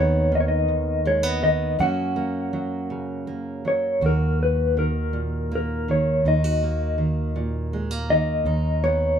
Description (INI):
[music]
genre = acoustic folk-pop ballad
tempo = 54 BPM (dotted quarters)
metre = 6/8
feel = straight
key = Eb minor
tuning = A4 = 440 Hz
[part]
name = mellow electric guitar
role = melody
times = 0.0-9.2 s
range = Bb4 to Gb5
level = -23 LUFS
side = left 1 dB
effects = tremolo
[part]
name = fingerpicked steel-string acoustic guitar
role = accompaniment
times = 0.0-9.2 s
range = D#2 to Gb4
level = -26 LUFS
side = right 3 dB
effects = none
[part]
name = fingered electric bass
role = bass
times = 0.0-9.2 s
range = D#2 to Gb2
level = -26 LUFS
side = equal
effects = none
[sound]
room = moderate studio reverb, RT60 0.6 s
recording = minimal, uncompressed stereo recording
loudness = -21 LUFS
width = side -8 dB against mid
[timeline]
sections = 0.0-9.2 A section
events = none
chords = 0.0 B/D#; 1.8 Gb; 4.0 Ebm; 8.4 B/D#